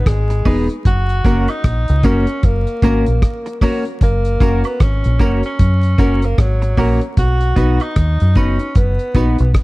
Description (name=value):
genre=roots reggae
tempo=76 BPM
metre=4/4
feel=swing 60% on 16ths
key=unclear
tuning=A4 = 440 Hz
part: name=warm tenor saxophone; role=melody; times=0.0-9.5 s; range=F#3 to F#4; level=-23 LUFS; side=equal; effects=none
part: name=deep dub fingered electric bass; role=bass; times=0.0-9.5 s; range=E1 to F#2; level=-15 LUFS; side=equal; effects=none
part: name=damped 70s drum kit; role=drums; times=0.1-9.6 s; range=hi-hat, kick drum, rim click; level=-15 LUFS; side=equal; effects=vintage 12-bit sampler grit
part: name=clean electric guitar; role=accompaniment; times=0.3-9.4 s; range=A#3 to B4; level=-20 LUFS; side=right 2 dB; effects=lush chorus
part: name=warm concert grand piano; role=stabs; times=0.4-9.4 s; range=C#4 to B4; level=-24 LUFS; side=left 4 dB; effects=none
part: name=tambourine and woodblock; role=percussion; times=0.5-9.4 s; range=none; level=-33 LUFS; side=right 6 dB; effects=none
room=small room ambience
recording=dark, warm production, vinyl crackle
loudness=-13 LUFS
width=side -20 dB against mid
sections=0.0-9.6 A section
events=none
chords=0.0 G#m; 0.9 F#; 7.2 B